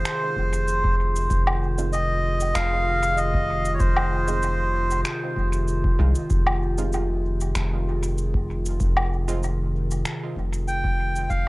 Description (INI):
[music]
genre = ambient dub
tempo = 96 BPM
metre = 4/4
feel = straight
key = F minor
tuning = A4 = 440 Hz
[part]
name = melodica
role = melody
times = 0.0-5.0, 10.7-11.5 s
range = C5 to G5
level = -25 LUFS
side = equal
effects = cassette tape, dub echo
[part]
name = warbly tape-like pad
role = sustained chords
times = 0.0-11.5 s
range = C3 to Ab4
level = -30 LUFS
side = equal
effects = chorus, built-in reverb, cassette tape
[part]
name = soft dub sub bass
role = bass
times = 0.0-11.5 s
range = F1 to C2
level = -25 LUFS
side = equal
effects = none
[part]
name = electronic finger snaps, cabasa and woodblock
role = drums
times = 0.1-11.4 s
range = none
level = -29 LUFS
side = equal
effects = cassette tape, dub echo
[part]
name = electronic kick drum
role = drums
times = 0.4-11.4 s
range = none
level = -26 LUFS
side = equal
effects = cassette tape
[part]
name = filtered dub chord stab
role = stabs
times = 1.8-9.5 s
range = Ab3 to F4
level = -36 LUFS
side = right 6 dB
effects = chorus, cassette tape, dub echo
[sound]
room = light reverb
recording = home recording on cassette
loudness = -21 LUFS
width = side -21 dB against mid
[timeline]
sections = 0.0-11.5 A section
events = fade-out 9.6-11.5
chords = 0.0 Fm7